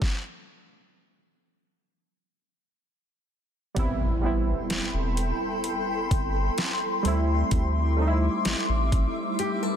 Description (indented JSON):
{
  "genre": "contemporary R&B",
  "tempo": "64 BPM",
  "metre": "4/4",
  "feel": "straight",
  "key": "unclear",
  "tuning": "A4 = 442 Hz",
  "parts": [
    { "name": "warm analog keys", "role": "accompaniment", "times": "0.0-9.8 s", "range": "G3 to E4", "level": "-29 LUFS", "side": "right 2 dB", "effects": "chorus" },
    { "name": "smooth R&B drum kit", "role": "drums", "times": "0.0-9.6 s", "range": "hi-hat, kick drum, snare drum", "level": "-27 LUFS", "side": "equal", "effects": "soft clipping on snare" },
    { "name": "granular cloud pad", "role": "sustained chords", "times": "4.5-9.8 s", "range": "G3 to D6", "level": "-29 LUFS", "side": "left 2 dB", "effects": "built-in reverb, sidechain pumping" },
    { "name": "warm sub bass", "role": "bass", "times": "3.8-9.1 s", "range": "E1 to D2", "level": "-26 LUFS", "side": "equal", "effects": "none" },
    { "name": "impact", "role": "sound effects", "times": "3.8-7.5 s", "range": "none", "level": "-38 LUFS", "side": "equal", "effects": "none" },
    { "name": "nylon-string guitar", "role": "arpeggios", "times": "9.4-9.8 s", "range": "G4 to A4", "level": "-29 LUFS", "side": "left 3 dB", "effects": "none" }
  ],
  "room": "digital ambience",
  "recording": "dense, heavily limited modern master",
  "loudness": "-23 LUFS",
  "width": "side -8 dB against mid",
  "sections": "0.0-3.8 A section; 3.8-9.8 B section",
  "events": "stop 0.0-3.8; impact 3.8-7.5",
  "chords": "0.0 N.C.; 3.8 Am9; 7.0 D9sus4"
}